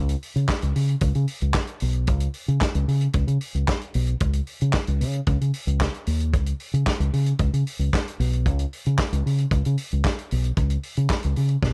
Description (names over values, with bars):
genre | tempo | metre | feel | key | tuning
disco | 113 BPM | 4/4 | straight | unclear | A4 = 440 Hz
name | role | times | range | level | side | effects
fingered electric bass | bass | 0.0-11.7 s | B1 to C#3 | -24 LUFS | equal | none
warm soul drum kit | drums | 0.1-11.7 s | handclaps, hi-hat, kick drum, snare drum | -28 LUFS | equal | none
room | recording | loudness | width
little or no reverb | dark, warm production | -24 LUFS | mono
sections
0.0-11.7 A section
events
none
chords
none